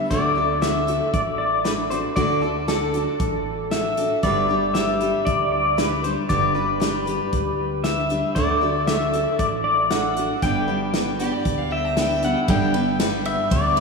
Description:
honky-tonk and classic country; 116 BPM; 4/4; straight; G major; A4 = 440 Hz
pedal steel guitar; melody; 0.0-13.8 s; A4 to G5; -22 LUFS; left 1 dB
picked steel-string acoustic guitar; accompaniment; 0.0-13.8 s; G2 to B4; -25 LUFS; equal
upright bass; bass; 0.1-13.8 s; G1 to D2; -29 LUFS; right 1 dB
natural country drum kit; drums; 0.1-13.8 s; hi-hat, kick drum, ride cymbal, snare drum; -28 LUFS; equal
clear fiddle; second line; 11.2-12.3 s; G4 to Bb5; -32 LUFS; right 5 dB
wet cathedral reverb, RT60 5.4 s; in a vast, echoing space, studio reverb; -19 LUFS; side -4 dB against mid
0.0-12.5 A section; 12.5-13.8 B section
0.1 D; 4.2 G; 8.4 D; 10.4 G
| 0.11 0.63 1.14 1.66 | 2.17 2.69 3.20 3.72 | 4.23 4.75 5.26 5.78 | 6.30 6.81 7.33 7.85 | 8.36 8.88 9.39 9.91 | 10.43 10.94 11.46 11.97 | 12.49 13.00 13.52

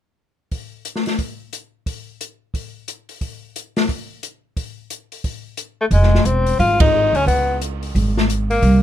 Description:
jazz, small-group swing and bop; 178 BPM; 4/4; swing 62% on 8ths; F minor; A4 = 441 Hz
open jazz drum kit; drums; 0.5-8.7 s; hi-hat, kick drum, ride cymbal, snare drum; -22 LUFS; left 1 dB
breathy tenor saxophone; melody; 5.8-8.8 s; Ab3 to F4; -17 LUFS; left 2 dB
upright bass; bass; 5.9-8.8 s; E1 to D2; -17 LUFS; right 1 dB
little or no reverb; close, detailed microphones; -16 LUFS; side -11 dB against mid
0.5-5.9 A section; 5.9-8.8 B section
band accent 6.8
0.5 N.C.; 5.9 Fm7; 7.3 Db5
| 0.50 0.84 1.18 1.52 | 1.85 2.19 2.53 2.87 | 3.21 3.54 3.88 4.22 | 4.56 4.90 5.23 5.57 | 5.91 6.25 6.58 6.92 | 7.26 7.60 7.93 8.27 | 8.61

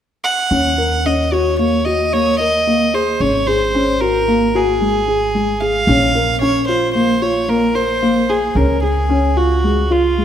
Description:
contemporary instrumental, chamber music in an uneven meter; 111 BPM; 5/4; straight; Eb dorian; A4 = 440 Hz
rich violin; melody; 0.2-10.2 s; F4 to Gb5; -17 LUFS; right 2 dB
felt-muted upright piano; arpeggios; 0.5-10.2 s; Ab3 to Bb4; -17 LUFS; left 2 dB
upright bass; bass; 0.5-10.2 s; Ab1 to Eb2; -21 LUFS; equal
wet concert hall reverb, RT60 1.8 s; minimal, uncompressed stereo recording; -13 LUFS; side -9 dB against mid
0.5-10.2 A section
0.0 N.C.; 0.5 Ebm7; 3.2 Ab7sus4; 5.9 Bbmadd9; 8.6 Db
| 0.51 1.05 1.59 2.13 2.67 | 3.21 3.75 4.28 4.81 5.34 | 5.88 6.41 6.95 7.48 8.02 | 8.56 9.10 9.64 10.19

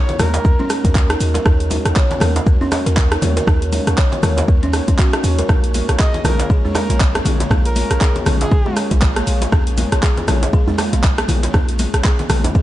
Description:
afro house; 119 BPM; 4/4; swing 58% on 16ths; Eb minor; A4 = 441 Hz
expressive synth lead; melody; 0.0-0.7, 6.0-8.8 s; Ab4 to Eb5; -27 LUFS; equal; chorus, tape echo
warm analog pad; sustained chords; 0.0-12.6 s; Bb3 to Db5; -27 LUFS; equal; chorus, sidechain pumping
buzzing kalimba; arpeggios; 0.0-12.6 s; Ab3 to Db5; -24 LUFS; right 1 dB; sidechain pumping, tape echo
deep house drum kit; drums; 0.1-12.6 s; cabasa, handclaps, hi-hat, rim click, toms; -22 LUFS; right 1 dB
congas; percussion; 0.1-12.4 s; -26 LUFS; left 3 dB
djembe; percussion; 0.1-12.5 s; -27 LUFS; right 2 dB
warm 808-style bass; bass; 0.2-12.6 s; Bb1 to Eb2; -18 LUFS; equal; sidechain pumping
electronic kick drum; drums; 0.4-12.6 s; -15 LUFS; equal
light reverb, digital ambience; dark, warm production, nothing above 10.3 kHz; -14 LUFS; side -14 dB against mid
0.0-12.6 A section
0.0 Ebm7; 5.5 Bbm7
0.45 0.95 | 1.46 1.96 2.46 2.97 | 3.47 3.98 4.48 4.99 | 5.49 6.00 6.50 7.00 | 7.51 8.01 8.52 9.02 | 9.52 10.03 10.53 11.04 | 11.54 12.04 12.55

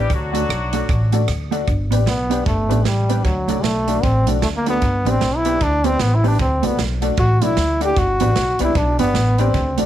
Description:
ska; 152 BPM; 4/4; swing 60% on 8ths; G major; A4 = 440 Hz
warm horn section; melody; 0.0-1.3 s; F#3 to G4; -26 LUFS; left 1 dB
mellow electric guitar; accompaniment; 0.0-9.9 s; A3 to G4; -26 LUFS; right 12 dB; harmonic tremolo
dark upright piano; stabs; 0.0-9.9 s; D4 to D5; -26 LUFS; left 12 dB
upright bass; bass; 0.0-9.9 s; G1 to D2; -20 LUFS; equal
swinging big-band drum kit; drums; 0.1-9.9 s; hi-hat, kick drum, rim click, snare drum; -24 LUFS; right 3 dB; tape echo
bright trombone; melody; 2.1-9.8 s; F#3 to G4; -20 LUFS; equal
light reverb, small room ambience; 1960s-style stereo with parts hard left and right; -16 LUFS; side -12 dB against mid
0.0-1.7 A section; 1.7-9.9 B section
trombone solo 1.7-9.9
0.1 D; 1.7 G; 3.2 D; 4.8 G; 6.4 D; 8.0 G
| 0.10 0.49 0.88 1.28 | 1.67 2.06 2.46 2.85 | 3.25 3.64 4.04 4.43 | 4.82 5.22 5.61 6.00 | 6.40 6.79 7.18 7.58 | 7.97 8.37 8.76 9.15 | 9.54

